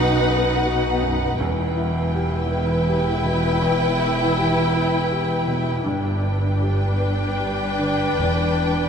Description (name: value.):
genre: cinematic, emotional film score for orchestra.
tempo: 54 BPM (dotted quarters).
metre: 6/8.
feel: rubato.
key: E minor.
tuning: A4 = 440 Hz.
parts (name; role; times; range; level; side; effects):
rich studio violin section; melody; 0.0-8.9 s; F#5 to G5; -27 LUFS; equal; none.
rich studio violin section; second line; 0.0-8.9 s; B4; -27 LUFS; left 1 dB; none.
clear concert grand piano; accompaniment; 0.0-8.9 s; B1 to B4; -27 LUFS; right 1 dB; none.
clear studio viola section; accompaniment; 0.0-8.9 s; D4 to E4; -25 LUFS; left 1 dB; none.
rich studio double bass section; bass; 0.0-8.9 s; E1 to B1; -26 LUFS; right 1 dB; none.
warm studio cello section; bass; 0.0-8.9 s; E2 to B2; -26 LUFS; equal; none.
timpani; percussion; 1.4-2.5, 8.2-8.9 s; E2; -31 LUFS; right 2 dB; none.
room: wet cathedral reverb, RT60 6.2 s.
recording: in a vast, echoing space.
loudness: -18 LUFS.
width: side -7 dB against mid.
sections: 0.0-8.9 A section.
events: none.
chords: 0.0 B; 1.4 Em; 5.8 G; 8.2 Em7.